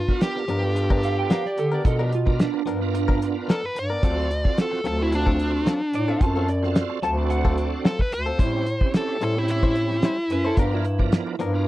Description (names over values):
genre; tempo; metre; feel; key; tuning
straight-eighth soul blues; 110 BPM; 4/4; swing 54% on 16ths; unclear; A4 = 440 Hz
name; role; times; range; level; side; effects
dark smooth lead guitar; melody; 0.0-10.6 s; D4 to D5; -25 LUFS; equal; overdrive
dark bass clarinet; bass; 0.0-11.7 s; D2 to D3; -25 LUFS; equal; none
bright tonewheel organ; accompaniment; 0.1-11.7 s; F3 to A#4; -30 LUFS; right 6 dB; slow rotary speaker, overdrive, chorus vibrato
direct-recorded clean electric guitar; stabs; 0.1-11.6 s; F3 to B#4; -32 LUFS; left 5 dB; spring reverb
cloth-damped thuddy drum kit; drums; 0.1-11.5 s; hi-hat, kick drum, snare drum; -21 LUFS; equal; none
electric guitar through a small old amp; second line; 1.1-11.7 s; D4 to A5; -28 LUFS; right 6 dB; lush chorus
room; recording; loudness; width
little or no reverb; dry, close 1970s-style studio recording; -20 LUFS; side -15 dB against mid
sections
0.0-11.7 A section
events
none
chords
0.0 G7#9; 4.0 D7#9; 8.4 A7#9; 10.6 G7#9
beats
0.22 0.76 1.31 | 1.85 2.40 2.94 3.49 | 4.03 4.58 5.12 5.67 | 6.21 6.76 7.30 7.85 | 8.39 8.94 9.48 10.03 | 10.58 11.12 11.67